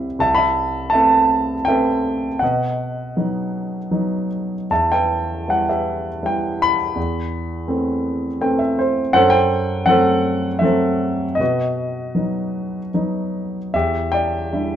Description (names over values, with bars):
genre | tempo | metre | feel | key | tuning
classical, lyrical solo piano | 74-83 BPM | 3/4 | rubato | E minor | A4 = 444 Hz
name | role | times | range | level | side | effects
warm grand piano | solo | 0.0-14.8 s | C2 to B5 | -17 LUFS | equal | none
room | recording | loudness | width
wet studio reverb, RT60 0.6 s | heard from further back in the room | -17 LUFS | side -10 dB against mid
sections
0.0-13.7 A section; 13.7-14.8 A section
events
grand piano fill 8.1-9.1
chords
0.2 Amadd9/C; 2.4 B; 4.7 Em; 7.0 Amadd9/E; 9.1 F#dim; 11.4 B; 13.7 Em7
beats
| 0.19 0.93 1.68 | 2.42 3.16 3.92 | 4.70 5.47 6.23 | 6.97 7.70 8.43 | 9.15 9.88 10.64 | 11.40 12.17 12.95 | 13.74 14.53